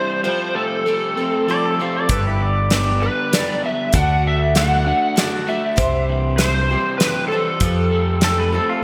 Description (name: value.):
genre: folk rock and heartland rock.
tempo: 98 BPM.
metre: 3/4.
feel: straight.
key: unclear.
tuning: A4 = 441 Hz.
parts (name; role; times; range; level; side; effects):
overdriven slide guitar; melody; 0.0-8.8 s; A4 to F#5; -24 LUFS; equal; ensemble chorus, delay.
picked twelve-string acoustic guitar; accompaniment; 0.0-8.8 s; C3 to D5; -28 LUFS; equal; subtle chorus.
crunchy overdriven guitar; riff; 0.0-8.8 s; G2 to D4; -28 LUFS; equal; none.
pedal steel guitar; second line; 1.5-3.0, 8.2-8.8 s; E4 to D5; -25 LUFS; equal; none.
picked electric bass; bass; 2.1-8.6 s; G1 to F2; -22 LUFS; equal; none.
natural country drum kit; drums; 2.1-8.4 s; hi-hat, kick drum, snare drum; -23 LUFS; equal; gated reverb.
room: moderate lush hall reverb, RT60 2.1 s.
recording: bright 1980s-style digital production.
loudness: -19 LUFS.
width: mono.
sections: 0.0-8.8 A section.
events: none.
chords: 0.2 Fadd9; 2.1 G; 3.9 D; 5.8 C; 7.6 Fadd9.